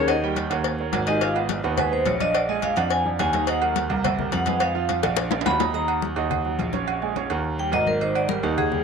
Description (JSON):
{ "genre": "Afro-Cuban jazz", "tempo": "212 BPM", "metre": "4/4", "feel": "straight", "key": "unclear", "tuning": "A4 = 440 Hz", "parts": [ { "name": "vibraphone with medium hard mallets", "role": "melody", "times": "0.0-8.8 s", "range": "Eb4 to Cb6", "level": "-24 LUFS", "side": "left 2 dB", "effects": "none" }, { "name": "warm baby grand piano", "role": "accompaniment", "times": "0.0-8.8 s", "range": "Eb3 to Db6", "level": "-28 LUFS", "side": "right 10 dB", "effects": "none" }, { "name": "warm grand piano", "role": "bass", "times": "0.0-8.8 s", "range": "Ab1 to F2", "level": "-27 LUFS", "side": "equal", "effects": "none" }, { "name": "agogo bells and timbales", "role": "percussion", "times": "0.1-8.7 s", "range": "none", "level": "-29 LUFS", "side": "right 11 dB", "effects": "none" }, { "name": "congas", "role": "percussion", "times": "0.1-8.8 s", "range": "none", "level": "-32 LUFS", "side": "left 12 dB", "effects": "none" }, { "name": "cowbell and bongos", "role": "percussion", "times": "0.1-5.7 s", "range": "none", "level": "-29 LUFS", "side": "left 12 dB", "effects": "none" } ], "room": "wet spring reverb, RT60 1.4 s, studio reverb", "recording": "1960s-style stereo with parts hard left and right", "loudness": "-21 LUFS", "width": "side -6 dB against mid", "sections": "0.0-5.7 A section; 5.7-8.8 A section", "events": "vibraphone solo 0.0-8.8; drum fill 5.0-5.7", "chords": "0.1 Eb7; 1.2 Abmadd9; 2.3 Bb7; 3.5 Ebm; 4.0 C7b13; 4.6 Fdim; 5.2 Bb; 5.7 Ebm7; 6.9 Bbm7; 7.4 Eb; 8.0 Ab5" }